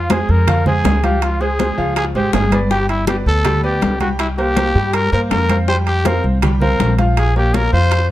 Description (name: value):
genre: latin, salsa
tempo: 161 BPM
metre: 4/4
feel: straight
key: unclear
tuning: A4 = 439 Hz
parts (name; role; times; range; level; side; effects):
- growling trumpet; melody; 0.0-8.1 s; E4 to C5; -19 LUFS; equal; none
- bright grand piano; accompaniment; 0.0-8.0 s; F3 to G5; -22 LUFS; right 1 dB; none
- upright bass; bass; 0.0-8.1 s; G1 to G2; -17 LUFS; equal; none
- bongos; percussion; 0.1-8.1 s; none; -25 LUFS; left 5 dB; none
- congas; percussion; 0.1-8.1 s; none; -22 LUFS; left 1 dB; none
- timbales; percussion; 0.1-8.1 s; none; -26 LUFS; right 7 dB; none
room: light reverb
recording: dark, warm production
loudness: -13 LUFS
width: side -14 dB against mid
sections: 0.0-8.1 A section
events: none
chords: 0.0 Fm; 1.2 Dbmaj7; 2.7 G; 4.2 C5; 5.7 Fsus2; 7.2 Bbm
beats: 0.10 0.47 0.85 | 1.22 1.59 1.96 2.34 | 2.71 3.08 3.45 3.82 | 4.20 4.57 4.94 5.31 | 5.68 6.06 6.43 6.80 | 7.17 7.54 7.92